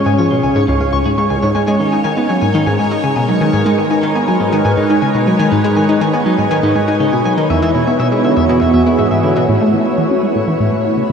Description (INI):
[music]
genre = ambient, sequencer-driven space music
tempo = 121 BPM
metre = 4/4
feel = straight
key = unclear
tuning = A4 = 439 Hz
[part]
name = phased analog pad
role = sustained chords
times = 0.0-11.1 s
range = E3 to E#5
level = -16 LUFS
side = equal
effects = phaser, chorus
[part]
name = electric guitar at the edge of break-up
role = arpeggios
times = 0.0-9.4 s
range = D#4 to C#6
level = -19 LUFS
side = left 2 dB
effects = auto-pan, analog delay
[part]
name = analog pluck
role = riff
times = 0.0-11.1 s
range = C#2 to E4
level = -15 LUFS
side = equal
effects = chorus, analog delay
[part]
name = bubbling stepped-filter texture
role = texture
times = 0.0-11.1 s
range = C#5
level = -24 LUFS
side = right 2 dB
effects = chorus, built-in reverb
[sound]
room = wet shimmer reverb, RT60 8.6 s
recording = dark, warm production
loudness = -12 LUFS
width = side -6 dB against mid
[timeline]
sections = 0.0-9.5 A section; 9.5-11.1 B section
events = none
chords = 0.0 C#; 1.5 G#m; 7.5 E7; 9.5 A